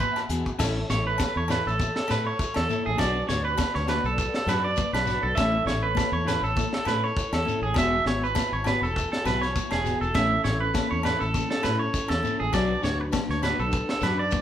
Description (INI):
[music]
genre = highlife guitar band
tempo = 100 BPM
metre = 4/4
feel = swing 55% on 16ths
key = A major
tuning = A4 = 442 Hz
[part]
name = mellow tonewheel organ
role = sustained chords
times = 0.0-14.4 s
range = C#4 to G#5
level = -35 LUFS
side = left 1 dB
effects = slow rotary speaker, chorus vibrato
[part]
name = electric guitar at the edge of break-up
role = arpeggios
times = 0.0-14.4 s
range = G#4 to E5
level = -27 LUFS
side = right 3 dB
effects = none
[part]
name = tight funk drum kit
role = drums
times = 0.0-14.4 s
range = crash cymbal, hi-hat, kick drum, rim click, snare drum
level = -30 LUFS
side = equal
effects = none
[part]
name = congas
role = percussion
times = 0.0-14.4 s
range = none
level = -36 LUFS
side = left 5 dB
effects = none
[part]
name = shekere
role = percussion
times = 0.0-14.4 s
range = none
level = -37 LUFS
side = left 4 dB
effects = none
[part]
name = agogo bells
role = percussion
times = 0.2-14.2 s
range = none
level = -37 LUFS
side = left 5 dB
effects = none
[part]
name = clean electric guitar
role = accompaniment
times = 0.3-14.2 s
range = F#3 to A4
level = -33 LUFS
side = left 4 dB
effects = none
[part]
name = fingered electric bass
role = bass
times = 0.3-14.4 s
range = E1 to A2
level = -30 LUFS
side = equal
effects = none
[sound]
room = moderate large studio reverb, RT60 1.4 s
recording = band playing live in one room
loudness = -23 LUFS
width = side -10 dB against mid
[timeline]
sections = 0.6-14.4 A section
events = none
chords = 0.0 Eadd9; 0.6 A; 3.0 Bm; 5.4 A; 7.8 Eadd9; 10.1 A; 12.5 Bm